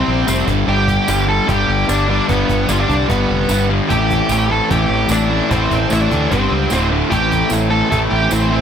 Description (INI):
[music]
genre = classic rock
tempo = 149 BPM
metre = 4/4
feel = straight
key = unclear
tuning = A4 = 438 Hz
[part]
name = octave-fuzz lead guitar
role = melody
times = 0.0-8.6 s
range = B3 to A4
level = -19 LUFS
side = right 1 dB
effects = distortion, tape echo
[part]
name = crunchy overdriven guitar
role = riff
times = 0.0-8.6 s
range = D2 to C4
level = -19 LUFS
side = left 9 dB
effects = none
[part]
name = distorted electric guitar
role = riff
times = 0.0-8.6 s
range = D2 to C4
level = -22 LUFS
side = right 16 dB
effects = overdrive
[part]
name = fingered electric bass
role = bass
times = 0.1-8.6 s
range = D1 to D2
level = -19 LUFS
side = right 1 dB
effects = none
[part]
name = cajon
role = drums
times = 0.3-8.4 s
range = none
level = -24 LUFS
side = equal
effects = none
[part]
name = tambourine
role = percussion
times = 0.3-8.4 s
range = none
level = -29 LUFS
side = right 7 dB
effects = none
[part]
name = overdriven electric guitar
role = riff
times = 3.9-8.6 s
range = D2 to A4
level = -24 LUFS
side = right 2 dB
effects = spring reverb
[sound]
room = light reverb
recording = none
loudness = -13 LUFS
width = side -8 dB against mid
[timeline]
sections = 0.0-8.6 A section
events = none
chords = 0.5 G; 3.9 Am7; 6.3 G5; 6.7 D5; 7.1 Am7